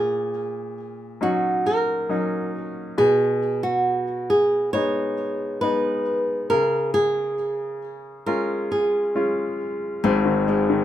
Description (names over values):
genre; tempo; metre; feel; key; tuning
pop; 68 BPM; 4/4; straight; unclear; A4 = 435 Hz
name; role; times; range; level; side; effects
flamenco guitar; melody; 0.0-10.8 s; C4 to C#5; -22 LUFS; right 1 dB; none
bright concert grand piano; accompaniment; 0.0-10.8 s; Ab1 to E#4; -25 LUFS; left 2 dB; none
room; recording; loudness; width
wet studio ambience, RT60 0.5 s; rough home demo mix; -20 LUFS; side -12 dB against mid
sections
0.0-10.0 A section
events
none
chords
0.0 D#m7/A#; 3.0 B6; 6.5 C#; 10.0 Ab